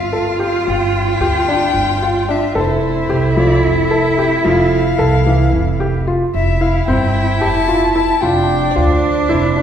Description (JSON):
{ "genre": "contemporary instrumental, chamber music in an uneven meter", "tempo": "223 BPM (eighths)", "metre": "7/8", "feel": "straight", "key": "F major", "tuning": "A4 = 440 Hz", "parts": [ { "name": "dark violin", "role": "melody", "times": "0.0-9.6 s", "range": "C5 to A5", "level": "-20 LUFS", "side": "left 5 dB", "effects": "none" }, { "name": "clear cello", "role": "second line", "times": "0.0-9.6 s", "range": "D4 to F4", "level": "-19 LUFS", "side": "right 3 dB", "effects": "none" }, { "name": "clear woodwind section", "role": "sustained chords", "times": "0.0-6.3 s", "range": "G3 to A4", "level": "-26 LUFS", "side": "left 2 dB", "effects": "none" }, { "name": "upright bass", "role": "bass", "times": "0.0-9.6 s", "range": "F1 to D2", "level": "-18 LUFS", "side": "right 1 dB", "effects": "none" }, { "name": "felt-muted upright piano", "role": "arpeggios", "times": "0.1-9.6 s", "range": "E3 to A4", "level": "-18 LUFS", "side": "left 1 dB", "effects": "none" } ], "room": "wet scoring stage reverb, RT60 1.6 s", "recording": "heard from further back in the room", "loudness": "-12 LUFS", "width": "side -9 dB against mid", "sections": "0.0-6.3 A section; 6.3-9.6 B section", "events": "none", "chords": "0.0 G7sus4; 2.6 Fmaj7; 6.3 C6/F; 8.2 Dm11/F", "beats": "0.14 0.41 | 0.68 0.95 1.22 1.49 1.76 2.03 2.29 | 2.56 2.83 3.10 3.37 3.64 3.91 4.18 | 4.45 4.72 4.99 5.26 5.53 5.80 6.07 | 6.34 6.61 6.88 7.15 7.42 7.69 7.96 | 8.22 8.49 8.76 9.03 9.30 9.57" }